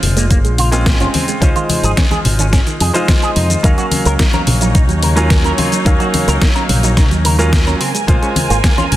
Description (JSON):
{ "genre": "nu-disco, nu disco", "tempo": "108 BPM", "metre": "4/4", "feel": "straight", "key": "Eb dorian", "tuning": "A4 = 441 Hz", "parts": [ { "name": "bright baby grand piano", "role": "accompaniment", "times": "0.0-9.0 s", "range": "Gb3 to F5", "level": "-20 LUFS", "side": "equal", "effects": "sidechain pumping, dub echo" }, { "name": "soft round pluck", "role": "arpeggios", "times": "0.0-9.0 s", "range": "C3 to Db4", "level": "-23 LUFS", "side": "right 2 dB", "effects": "chorus, sidechain pumping, digital delay" }, { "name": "fingered electric bass with an envelope filter", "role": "bass", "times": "0.0-9.0 s", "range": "F1 to F2", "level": "-15 LUFS", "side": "equal", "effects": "none" }, { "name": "pop drum kit", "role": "drums", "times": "0.0-9.0 s", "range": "hi-hat, shaker, snare drum", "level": "-19 LUFS", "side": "equal", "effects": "overdrive" }, { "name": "congas", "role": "percussion", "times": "0.0-9.0 s", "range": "none", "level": "-21 LUFS", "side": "left 1 dB", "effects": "none" }, { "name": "electric guitar with an envelope filter", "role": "riff", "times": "0.2-8.8 s", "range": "Bb3 to Bb4", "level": "-22 LUFS", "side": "right 1 dB", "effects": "analog chorus, dub echo" }, { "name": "electronic kick drum", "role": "drums", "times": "0.3-8.8 s", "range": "none", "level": "-13 LUFS", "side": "equal", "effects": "overdrive" }, { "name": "muted studio string section", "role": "sustained chords", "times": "3.6-9.0 s", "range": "Eb4 to Ab5", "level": "-22 LUFS", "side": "equal", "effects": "sidechain pumping" } ], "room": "light reverb", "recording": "dense, heavily limited modern master", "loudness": "-11 LUFS", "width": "side -14 dB against mid", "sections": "0.0-9.0 A section", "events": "none", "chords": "0.0 Bbm7; 1.4 Dbmaj9; 3.6 Ebm7; 7.8 Bbm7" }